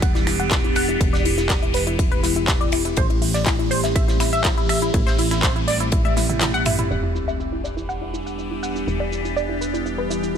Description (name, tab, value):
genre	progressive house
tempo	122 BPM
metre	4/4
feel	straight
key	unclear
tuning	A4 = 444 Hz
part	evolving wavetable pad	sustained chords	0.0-10.4 s	E3 to G4	-25 LUFS	equal	phaser, built-in reverb, sidechain pumping
part	tight sequenced synth	arpeggios	0.0-10.4 s	E4 to F#5	-25 LUFS	left 1 dB	chorus, cassette tape, sidechain pumping, ping-pong delay
part	tight sequencer bass	bass	0.0-10.4 s	E1 to A1	-27 LUFS	equal	sidechain pumping
part	big-room dance drum kit	drums	0.0-10.4 s	cabasa, finger snaps, handclaps, hi-hat, toms	-26 LUFS	equal	sidechain pumping on hats, low-pass filter on hats, low-pass filter on snare, sidechain pumping on toms, low-pass filter on toms, sidechain pumping on perc, low-pass filter on perc
part	electronic kick drum	drums	0.0-6.0 s	none	-21 LUFS	equal	none
part	tight metal drum kit	drums	0.0-6.9 s	hi-hat, ride cymbal, snare drum	-32 LUFS	left 2 dB	high-pass filter on cymbals, high-pass filter on hats, high-pass filter on snare, high-pass filter on room
part	sub drop	sound effects	6.9-8.9 s	none	-31 LUFS	equal	none
room	light reverb, small room ambience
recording	none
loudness	-18 LUFS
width	side -8 dB against mid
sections	0.0-6.9 A section; 6.9-10.4 B section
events	filter sweep on synth arpeggio sound 0.0-6.9, 6.9-10.4; drum fill 5.9-6.9; kick drops out 6.4-6.9; impact 6.9-8.9; filter sweep on drum 6.9-10.4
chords	0.0 Em7; 3.0 Am7; 6.9 Em7